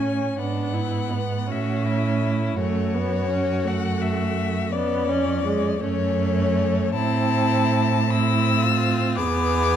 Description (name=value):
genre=classical, slow romantic movement for string quartet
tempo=55 BPM (dotted quarters)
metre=6/8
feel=rubato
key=unclear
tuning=A4 = 440 Hz
part: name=rich violin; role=melody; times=0.0-9.8 s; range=C#5 to E6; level=-26 LUFS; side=left 10 dB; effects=none
part: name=rich violin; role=second line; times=0.0-9.8 s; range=B3 to G#4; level=-30 LUFS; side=left 3 dB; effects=none
part: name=rich viola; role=accompaniment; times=0.0-9.8 s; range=G#3 to E4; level=-26 LUFS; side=right 3 dB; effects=none
part: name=clear cello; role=bass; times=0.0-9.8 s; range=E2 to A2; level=-24 LUFS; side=right 3 dB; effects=none
room=moderate recital hall reverb, RT60 1.6 s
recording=dark, warm production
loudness=-20 LUFS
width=side -9 dB against mid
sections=0.0-9.8 A section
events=none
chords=0.4 E7/G#; 1.5 A; 2.6 F#m7; 4.7 C#7/E#; 5.8 F#m; 6.9 Am; 9.2 E7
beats=| 0.40 1.50 | 2.58 3.67 | 4.74 5.81 | 6.95 8.11 | 9.19